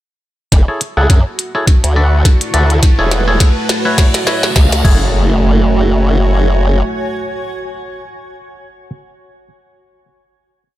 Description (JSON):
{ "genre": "glitch hop", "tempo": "104 BPM", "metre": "4/4", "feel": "swing 57% on 16ths", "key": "F# minor", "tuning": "A4 = 440 Hz", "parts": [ { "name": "dark analog pad", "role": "sustained chords", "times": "2.1-8.2 s", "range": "A3 to E5", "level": "-20 LUFS", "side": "right 2 dB", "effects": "chorus, sidechain pumping" }, { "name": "formant-sweep wobble bass", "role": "bass", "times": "0.5-6.8 s", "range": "E1 to F#2", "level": "-12 LUFS", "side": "equal", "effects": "chorus, overdrive" }, { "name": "electronic kick drum", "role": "drums", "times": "0.5-5.0 s", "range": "none", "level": "-9 LUFS", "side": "equal", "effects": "overdrive, small room ambience" }, { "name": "glitchy drum kit", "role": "drums", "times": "0.5-5.0 s", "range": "crash cymbal, hi-hat, snare drum", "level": "-18 LUFS", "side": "equal", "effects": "small room ambience" }, { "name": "riser and impact", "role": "sound effects", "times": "1.9-8.9 s", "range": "none", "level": "-24 LUFS", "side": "equal", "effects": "none" }, { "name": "granular cloud pad", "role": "texture", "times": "1.3-8.2 s", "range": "E4 to C#6", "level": "-22 LUFS", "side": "equal", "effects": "built-in reverb, sidechain pumping" }, { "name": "clav", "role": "stabs", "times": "0.7-8.9 s", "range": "E4 to F#5", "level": "-19 LUFS", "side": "left 1 dB", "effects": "sidechain pumping, low-pass filter, tape echo" } ], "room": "light reverb", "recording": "none", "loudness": "-10 LUFS", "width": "side -14 dB against mid", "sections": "0.5-5.1 build; 5.1-7.4 final note", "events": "build-up 0.5-5.1; drum fill 0.5-5.1; riser 1.9-5.1", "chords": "0.5 F#m7; 1.7 E7sus4; 2.8 F#m7; 4.0 A6; 4.8 F#m7" }